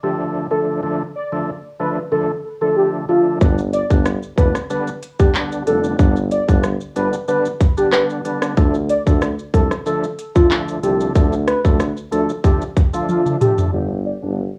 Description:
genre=dancehall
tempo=93 BPM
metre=4/4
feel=straight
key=D dorian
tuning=A4 = 439 Hz
part: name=warm velvety synth lead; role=melody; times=0.0-14.2 s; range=F4 to D5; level=-22 LUFS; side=equal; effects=chorus, low-pass filter, cassette tape, tape echo
part: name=percussive tonewheel organ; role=accompaniment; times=0.0-14.4 s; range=D3 to D4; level=-25 LUFS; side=equal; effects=chorus vibrato, low-pass filter, cassette tape
part: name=breathy tuba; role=bass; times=3.4-14.5 s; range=F1 to D2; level=-23 LUFS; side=equal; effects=none
part: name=island pop drum kit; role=drums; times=3.4-13.7 s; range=handclaps, hi-hat, kick drum, rim click, shaker, toms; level=-18 LUFS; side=equal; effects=overdrive
room=little or no reverb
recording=home recording on cassette, studio ambience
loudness=-18 LUFS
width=mono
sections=0.0-13.7 A section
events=drum fill 13.1-13.7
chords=0.0 Dm; 3.4 G; 8.6 Dm; 13.7 G

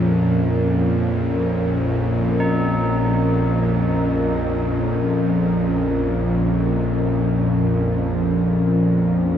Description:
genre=dark ambient drone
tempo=free time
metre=none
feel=none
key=Bb minor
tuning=A4 = 439 Hz
part: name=sweeping resonant pad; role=sustained chords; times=0.0-9.4 s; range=F3 to Bb4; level=-22 LUFS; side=equal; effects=chorus, shimmer reverb
part: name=tubular bells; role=arpeggios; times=0.0-9.4 s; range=Eb4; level=-32 LUFS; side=right 1 dB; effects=diffuse ambient delay, shimmer reverb
part: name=bowed-like drone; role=drone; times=0.0-9.4 s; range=Bb1 to F2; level=-19 LUFS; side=equal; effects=built-in reverb
room=wet huge ambient reverb, RT60 7.4 s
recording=dark, warm production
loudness=-17 LUFS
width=side -9 dB against mid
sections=0.0-9.4 A section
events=fade-out on tubular bells 0.0-9.4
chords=0.0 Bbm

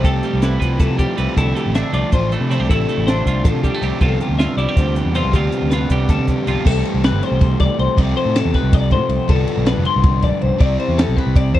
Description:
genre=math rock and midwest emo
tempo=318 BPM (eighths)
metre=7/8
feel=straight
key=unclear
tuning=A4 = 440 Hz
part: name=twelve-string electric guitar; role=accompaniment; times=0.0-8.0 s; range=C3 to B4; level=-23 LUFS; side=right 5 dB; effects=none
part: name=twelve-string electric guitar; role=arpeggios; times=0.0-11.6 s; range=G4 to C6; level=-23 LUFS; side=left 7 dB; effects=none
part: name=crunchy overdriven guitar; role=riff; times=0.0-11.6 s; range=G2 to E4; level=-23 LUFS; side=equal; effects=none
part: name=picked electric bass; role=bass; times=0.0-11.6 s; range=F1 to C3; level=-19 LUFS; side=equal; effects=none
part: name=compact cocktail drum kit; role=drums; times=0.0-11.6 s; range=crash cymbal, hi-hat, kick drum, ride cymbal, snare drum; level=-16 LUFS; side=equal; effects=none
room=little or no reverb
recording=dry, close 1970s-style studio recording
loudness=-14 LUFS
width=side -13 dB against mid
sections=0.0-6.7 A section; 6.7-11.6 B section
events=none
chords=0.0 Fmaj9/C; 1.4 Dm9; 4.0 G9sus4/C; 6.7 Am7; 8.0 F/C; 9.3 G7; 10.6 Cmaj7

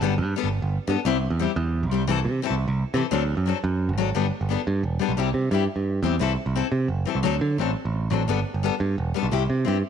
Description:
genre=highlife guitar band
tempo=116 BPM (dotted quarters)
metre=12/8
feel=straight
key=G major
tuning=A4 = 440 Hz
part: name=picked steel-string acoustic guitar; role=accompaniment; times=0.0-9.8 s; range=E3 to A4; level=-26 LUFS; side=left 9 dB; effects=none
part: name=picked electric bass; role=bass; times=0.0-9.8 s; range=E1 to D3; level=-24 LUFS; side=right 2 dB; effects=none
room=light reverb, small room ambience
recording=none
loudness=-22 LUFS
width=side -8 dB against mid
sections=0.0-4.1 A section; 4.1-9.9 B section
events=none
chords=0.0 Gadd9; 1.1 C; 2.1 Am/C; 3.1 D7; 4.1 Gadd9; 5.2 C; 6.2 Am/C; 7.2 D7; 8.3 Gadd9; 9.3 C

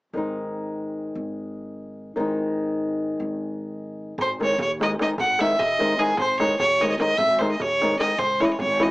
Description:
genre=balkan folk, Balkan wedding band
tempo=300 BPM (eighths)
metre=5/8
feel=straight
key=G# major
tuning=A4 = 441 Hz
part: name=flamenco guitar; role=accompaniment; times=0.1-8.9 s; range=D#3 to E4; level=-25 LUFS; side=left 1 dB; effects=none
part: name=upright bass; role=bass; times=0.1-8.9 s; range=G#1 to D#2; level=-35 LUFS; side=equal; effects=none
part: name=bright fiddle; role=melody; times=4.2-8.9 s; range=G#4 to F#5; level=-21 LUFS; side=right 1 dB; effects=none
part: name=darbuka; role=percussion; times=4.2-8.9 s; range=none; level=-32 LUFS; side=right 1 dB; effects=none
room=moderate spring reverb, RT60 1.0 s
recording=small speaker sound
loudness=-21 LUFS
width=side -20 dB against mid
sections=0.1-4.2 A section; 4.2-8.9 B section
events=none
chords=0.1 G#; 8.2 C#m

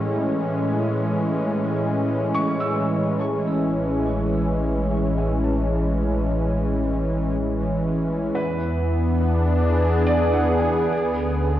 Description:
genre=ambient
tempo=70 BPM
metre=3/4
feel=straight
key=A major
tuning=A4 = 440 Hz
part: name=warm analog pad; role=sustained chords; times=0.0-11.6 s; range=A2 to G#4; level=-21 LUFS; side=equal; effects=chorus
part: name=felt-muted upright piano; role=arpeggios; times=0.0-11.6 s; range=B4 to E6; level=-29 LUFS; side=equal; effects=tape echo
part: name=warm sub bass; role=bass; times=3.2-11.6 s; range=A1 to E2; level=-24 LUFS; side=equal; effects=none
room=wet concert hall reverb, RT60 2.0 s, studio reverb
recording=worn, warbling old tape, cassette tape, warbly pitch drift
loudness=-20 LUFS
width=side -12 dB against mid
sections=0.0-3.2 A section; 3.2-11.6 B section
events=fade-in on felt piano 3.2-11.6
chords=0.0 Amaj7; 8.4 E7; 10.9 Dmaj7

